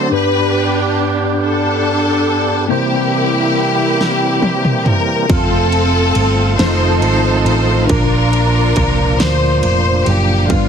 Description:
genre	slow gospel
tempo	46 BPM (dotted quarters)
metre	6/8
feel	straight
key	unclear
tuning	A4 = 440 Hz
part	clear studio string section	melody	0.0-10.7 s	Bb3 to C5	-16 LUFS	left 1 dB	none
part	mellow tine electric piano	accompaniment	0.0-10.7 s	G2 to C5	-19 LUFS	left 2 dB	medium stereo tremolo
part	percussive tonewheel organ	sustained chords	0.0-10.7 s	D3 to A4	-20 LUFS	right 4 dB	fast rotary speaker, overdrive
part	big-room dance drum kit	drums	4.0-10.7 s	kick drum, ride cymbal, snare drum, toms	-20 LUFS	equal	none
part	hollow-body short-scale fingered electric bass	bass	5.3-10.7 s	F1 to D2	-16 LUFS	right 1 dB	none
room	light reverb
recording	heavily compressed radio sound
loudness	-12 LUFS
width	side -7 dB against mid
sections	0.0-10.7 A section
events	drum fill 4.0-5.3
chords	0.1 G; 2.7 C7; 5.3 F; 6.6 F7; 7.9 Bb

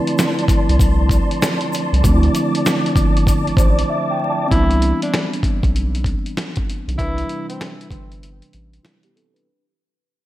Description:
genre	hip hop, boom-bap hip-hop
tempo	97 BPM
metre	4/4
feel	swing 63% on 16ths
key	unclear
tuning	A4 = 440 Hz
part	mellow tine electric piano	accompaniment	0.0-9.6 s	C3 to A5	-22 LUFS	right 1 dB	medium stereo tremolo, high-pass filter, low-pass filter
part	mellow tonewheel organ	sustained chords	0.0-4.5 s	F3 to D6	-23 LUFS	equal	chorus vibrato, fast rotary speaker, high-pass filter, low-pass filter
part	dusty soul sampler-style drum kit	drums	0.1-9.5 s	hi-hat, kick drum, snare drum	-18 LUFS	equal	none
part	egg shaker	percussion	0.2-3.8 s	none	-36 LUFS	left 4 dB	none
part	soft dub sub bass	bass	0.7-8.8 s	G1 to D2	-18 LUFS	equal	none
part	breathy tenor saxophone	melody	4.5-7.8 s	C4 to E4	-25 LUFS	equal	high-pass filter, low-pass filter, tape echo
room	light reverb, digital ambience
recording	vinyl crackle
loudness	-15 LUFS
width	side -15 dB against mid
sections	0.0-4.5 A section; 4.5-9.5 B section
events	break 3.9-4.5, 8.2-9.5; fade-out 4.5-9.5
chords	0.0 Dm7; 4.5 Cmaj9

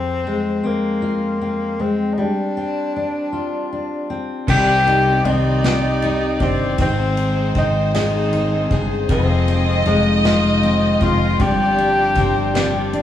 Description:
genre	six-eight pop ballad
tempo	52 BPM (dotted quarters)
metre	6/8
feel	straight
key	C minor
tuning	A4 = 440 Hz
part	breathy tenor saxophone	melody	0.0-12.9 s	Bb3 to G4	-21 LUFS	left 1 dB	none
part	fingerpicked steel-string acoustic guitar	accompaniment	0.0-13.0 s	F2 to Ab4	-21 LUFS	left 2 dB	none
part	warm symphonic violin section	second line	4.5-13.0 s	C5 to Eb5	-26 LUFS	equal	none
part	direct-recorded clean electric guitar	arpeggios	4.5-13.0 s	F2 to Ab4	-26 LUFS	right 3 dB	spring reverb
part	fretless electric bass	bass	4.5-13.0 s	F1 to C2	-21 LUFS	left 1 dB	none
part	unplugged drum kit	drums	4.5-13.0 s	crash cymbal, kick drum, ride cymbal, snare drum	-25 LUFS	equal	none
room	wet studio reverb, RT60 0.7 s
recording	band playing live in one room, small room ambience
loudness	-16 LUFS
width	side -11 dB against mid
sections	0.0-4.5 A section; 4.5-13.0 B section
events	none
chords	0.0 Fm; 2.2 G7sus4; 4.5 Cm; 6.8 Ab; 9.1 Fm7; 11.4 G7sus4

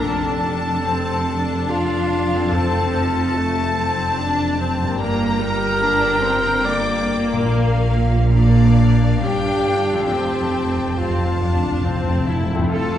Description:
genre	cinematic, emotional film score for orchestra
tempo	71 BPM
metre	3/4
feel	uneven beats, rubato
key	F major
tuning	A4 = 441 Hz
part	warm symphonic violin section	melody	0.0-12.5 s	F5 to A5	-31 LUFS	left 4 dB	none
part	clear chamber violin section	second line	0.0-12.3 s	D5 to D6	-26 LUFS	left 2 dB	none
part	warm clarinet	second line	0.0-12.3 s	D4 to D5	-24 LUFS	equal	none
part	clear symphonic viola section	accompaniment	0.0-13.0 s	F3 to F4	-24 LUFS	left 1 dB	none
part	concert harp	arpeggios	0.0-13.0 s	F2 to A4	-28 LUFS	left 3 dB	none
part	rich symphonic cello section	bass	0.0-13.0 s	F2 to A4	-22 LUFS	right 1 dB	none
part	rich symphonic double bass section	bass	0.0-13.0 s	F1 to F2	-24 LUFS	right 1 dB	none
part	timpani	percussion	2.5-3.7, 10.1-12.7 s	F2	-23 LUFS	equal	none
room	wet scoring stage reverb, RT60 2.0 s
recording	heard from further back in the room, nothing above 11.0 kHz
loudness	-16 LUFS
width	side -11 dB against mid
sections	0.0-12.7 A section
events	timpani fill 10.1-12.7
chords	0.0 F; 5.0 Gm; 7.5 Bb; 10.1 F

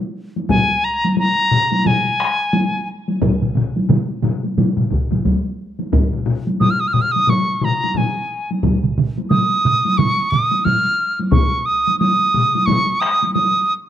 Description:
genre	japanese traditional, taiko drum ensemble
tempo	89 BPM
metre	4/4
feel	swing 60% on 16ths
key	Eb suspended pentatonic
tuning	A4 = 440 Hz
part	taiko ensemble	percussion	0.4-13.5 s	none	-21 LUFS	equal	none
part	bright reedy wooden piccolo	melody	0.5-13.7 s	Ab5 to F6	-17 LUFS	right 1 dB	none
part	taiko ensemble	percussion	0.5-13.2 s	none	-21 LUFS	left 4 dB	none
part	taiko ensemble	percussion	0.5-11.5 s	none	-19 LUFS	equal	none
part	taiko ensemble	percussion	3.2-10.9 s	none	-20 LUFS	right 4 dB	none
room	little or no reverb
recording	dry, close 1970s-style studio recording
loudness	-15 LUFS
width	side -10 dB against mid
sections	0.0-13.9 A section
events	none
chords	none

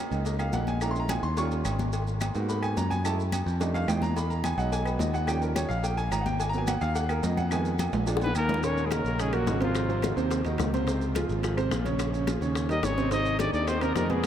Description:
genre	Afro-Cuban jazz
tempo	215 BPM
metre	4/4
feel	straight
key	Eb minor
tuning	A4 = 440 Hz
part	clear grand piano	accompaniment	0.1-14.3 s	Bb2 to Db6	-30 LUFS	right 3 dB	none
part	modern bright picked electric bass	bass	0.1-14.3 s	Ab1 to Ab2	-29 LUFS	equal	none
part	agogo bells and timbales	percussion	0.1-14.3 s	none	-37 LUFS	right 4 dB	none
part	maracas	percussion	0.1-14.3 s	none	-44 LUFS	right 7 dB	none
part	congas	percussion	0.3-14.3 s	none	-36 LUFS	left 4 dB	none
part	cowbell and bongos	percussion	0.3-14.3 s	none	-37 LUFS	left 6 dB	none
part	claves	percussion	0.4-14.3 s	none	-46 LUFS	left 8 dB	none
part	breathy trumpet	melody	8.2-10.1, 12.7-14.3 s	F4 to Eb5	-32 LUFS	equal	none
part	breathy trombone	second line	8.2-10.1, 12.7-14.3 s	F3 to Eb4	-35 LUFS	left 4 dB	none
room	moderate huge ambient reverb, RT60 8.2 s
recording	in a vast, echoing space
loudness	-25 LUFS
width	side -10 dB against mid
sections	0.0-8.6 A section; 8.6-14.3 B section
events	grand piano solo 0.0-8.6; drum fill 3.6-4.2, 7.5-8.6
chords	0.0 Gbmaj13; 0.8 Bbm7b5; 1.4 Eb7; 1.9 Abm7; 3.0 Gbm7; 3.6 F13; 4.2 Emaj9; 5.3 Eb7; 6.4 Abm7; 7.5 Fm7b5; 8.1 Bb7; 8.6 Ebm7; 9.8 Ab6; 10.9 Dbmaj7; 12.0 Bbm7; 12.6 Eb7; 13.1 Abmaj7

